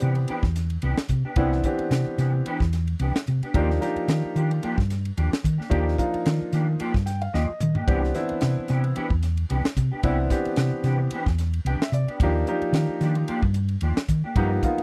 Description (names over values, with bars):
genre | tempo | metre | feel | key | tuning
electric jazz fusion | 111 BPM | 4/4 | swing 55% on 16ths | C major | A4 = 440 Hz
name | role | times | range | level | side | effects
warm grand piano | accompaniment | 0.0-14.8 s | E3 to G5 | -29 LUFS | equal | none
mellow electric guitar | stabs | 0.0-14.7 s | E3 to A#4 | -34 LUFS | equal | ensemble chorus
hollow-body short-scale fingered electric bass | bass | 0.0-14.8 s | C2 to Eb3 | -26 LUFS | equal | none
crisp fusion drum kit | drums | 0.0-14.8 s | hi-hat, kick drum, ride cymbal, snare drum, toms | -28 LUFS | equal | none
room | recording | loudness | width
little or no reverb | dry, close 1970s-style studio recording | -24 LUFS | mono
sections
0.0-14.8 A section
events
grand piano fill 6.8-7.9, 11.4-12.2; drum fill 7.3-7.9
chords
0.0 Cmaj9; 3.5 Ebmaj9; 7.9 Cmaj9; 12.2 Ebmaj9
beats
0.29 0.83 | 1.37 1.92 2.46 3.00 | 3.54 4.09 4.63 5.17 | 5.71 6.26 6.80 7.34 | 7.88 8.42 8.96 9.50 | 10.04 10.58 11.12 11.66 | 12.20 12.74 13.28 13.82 | 14.36